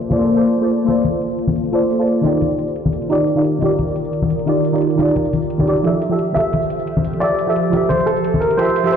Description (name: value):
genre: liquid drum and bass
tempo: 175 BPM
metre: 4/4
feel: straight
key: F major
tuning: A4 = 436 Hz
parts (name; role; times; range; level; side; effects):
- deep mellow chord stab; accompaniment; 0.0-9.0 s; Eb3 to E5; -18 LUFS; right 1 dB; chorus, ping-pong delay
- glassy FM pad; sustained chords; 0.0-9.0 s; Eb3 to E5; -22 LUFS; left 2 dB; ensemble chorus, built-in reverb, phaser
- electronic hi-hat and tambourine; drums; 0.0-9.0 s; none; -51 LUFS; left 1 dB; studio reverb
- congas; percussion; 0.1-8.4 s; none; -21 LUFS; left 2 dB; none
- dark grand piano; melody; 6.3-9.0 s; A4 to E5; -18 LUFS; right 1 dB; tape echo
room: moderate plate reverb, RT60 2.0 s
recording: played on a big sound system in a bare room, large studio reverb, low-pass filter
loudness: -15 LUFS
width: side -7 dB against mid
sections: 0.0-9.0 A section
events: filter sweep on ambient pad 0.0-9.0; filter sweep 0.0-9.0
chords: 0.0 Bbmaj9; 2.4 Ebmaj9; 5.8 Fmaj9